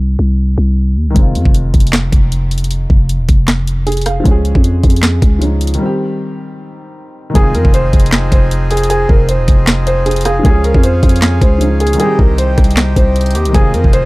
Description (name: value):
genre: hip hop, trap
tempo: 155 BPM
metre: 4/4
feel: half-time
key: F minor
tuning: A4 = 439 Hz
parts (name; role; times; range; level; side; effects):
- growling 808-style bass; bass; 0.0-14.1 s; Eb1 to F2; -13 LUFS; equal; none
- dark baby grand piano; accompaniment; 1.1-14.1 s; Eb3 to F5; -20 LUFS; equal; none
- trap drum kit; drums; 1.2-14.0 s; handclaps, hi-hat, kick drum, rim click, snare drum; -12 LUFS; equal; none
- felt-muted upright piano; melody; 7.4-14.1 s; G4 to C5; -17 LUFS; right 1 dB; tape echo
- accordion; sustained chords; 7.4-14.1 s; C3 to Ab4; -23 LUFS; equal; none
room: small room ambience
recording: dark, warm production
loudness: -10 LUFS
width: side -21 dB against mid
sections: 0.0-7.4 A section; 7.4-14.1 B section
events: break 0.0-1.2, 5.8-7.4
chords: 0.0 Cm; 1.2 Fm7; 4.3 Db; 5.8 Cm; 7.4 Fm7; 10.4 Db; 12.0 Cm; 13.5 Fm7